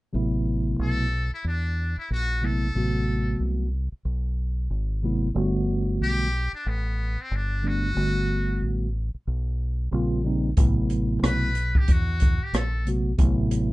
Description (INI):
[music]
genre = hip hop, jazz-hop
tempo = 92 BPM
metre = 4/4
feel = swing 59% on 16ths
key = A dorian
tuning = A4 = 439 Hz
[part]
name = mellow tine electric piano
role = accompaniment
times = 0.1-13.7 s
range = C3 to F#4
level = -26 LUFS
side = equal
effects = medium stereo tremolo
[part]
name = deep dub fingered electric bass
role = bass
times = 0.1-13.7 s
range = G1 to E2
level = -26 LUFS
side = equal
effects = none
[part]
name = trumpet with metal mute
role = melody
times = 0.8-12.9 s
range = B3 to B4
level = -30 LUFS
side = left 1 dB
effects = none
[part]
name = open jazz drum kit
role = drums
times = 10.6-13.7 s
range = hi-hat, kick drum, rim click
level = -21 LUFS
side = equal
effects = vintage 12-bit sampler grit
[sound]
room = little or no reverb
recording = rough home demo mix, nothing above 11.0 kHz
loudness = -22 LUFS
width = side -19 dB against mid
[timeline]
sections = 0.1-13.7 A section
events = none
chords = 0.1 Am69; 5.4 Gmaj9; 9.9 Bbm69; 10.6 Am69